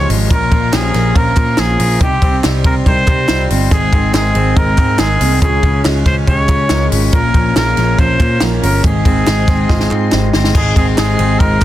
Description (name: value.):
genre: jangly indie pop.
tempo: 141 BPM.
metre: 4/4.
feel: straight.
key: Ab major.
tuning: A4 = 440 Hz.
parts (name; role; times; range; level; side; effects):
breathy trumpet; melody; 0.0-11.6 s; G4 to Db5; -18 LUFS; equal; none.
dark upright piano; accompaniment; 0.0-11.6 s; Ab3 to Bb4; -25 LUFS; right 4 dB; none.
fingerpicked steel-string acoustic guitar; accompaniment; 0.0-11.6 s; Ab2 to F4; -22 LUFS; right 8 dB; none.
ensemble organ-string; sustained chords; 0.0-11.6 s; G4 to Db6; -28 LUFS; equal; ensemble chorus.
electric guitar through a small old amp; arpeggios; 0.0-11.6 s; Ab2 to Db4; -20 LUFS; left 6 dB; none.
picked electric bass; bass; 0.0-11.6 s; G1 to Db3; -16 LUFS; equal; none.
compact cocktail drum kit; drums; 0.1-11.6 s; crash cymbal, hi-hat, kick drum, ride cymbal, snare drum; -15 LUFS; equal; none.
group handclap; percussion; 0.7-11.6 s; none; -26 LUFS; right 4 dB; none.
room: light reverb.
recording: dense, heavily limited modern master.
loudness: -10 LUFS.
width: side -13 dB against mid.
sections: 0.0-10.5 A section; 10.5-11.6 A section.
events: drum fill 9.7-10.5.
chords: 0.3 Bbm; 2.0 Cm; 3.7 Ab; 5.4 Db; 7.1 Bbm; 8.8 Ab.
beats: | 0.31 0.73 1.16 1.58 | 2.01 2.44 2.86 3.29 | 3.71 4.14 4.57 5.00 | 5.42 5.85 6.28 6.70 | 7.13 7.56 7.98 8.41 | 8.84 9.26 9.69 10.12 | 10.54 10.97 11.40.